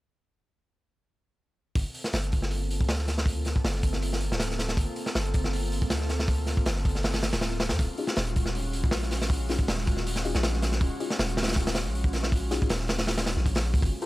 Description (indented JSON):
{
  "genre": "drum and bass, jungle",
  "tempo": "159 BPM",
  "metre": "4/4",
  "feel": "swing 53% on 16ths",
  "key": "unclear",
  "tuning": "A4 = 436 Hz",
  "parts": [
    { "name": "airy breathy pad", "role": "sustained chords", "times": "1.8-14.1 s", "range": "Ab3 to A4", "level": "-36 LUFS", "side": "equal", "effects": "chorus" },
    { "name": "long sustained 808-style bass", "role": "bass", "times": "1.8-13.9 s", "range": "D1 to G2", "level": "-30 LUFS", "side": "equal", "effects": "none" },
    { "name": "crunchy breakbeat drum kit", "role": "drums", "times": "1.8-14.1 s", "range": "hi-hat, kick drum, snare drum", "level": "-27 LUFS", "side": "equal", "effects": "none" },
    { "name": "deep mellow chord stab", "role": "stabs", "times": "8.0-14.1 s", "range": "Db4 to C5", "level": "-36 LUFS", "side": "left 4 dB", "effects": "chorus, dub echo" }
  ],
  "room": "little or no reverb",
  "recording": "none",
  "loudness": "-25 LUFS",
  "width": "side -18 dB against mid",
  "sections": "1.8-14.1 A section",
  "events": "none",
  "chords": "1.8 Gm11; 7.8 Ebm11"
}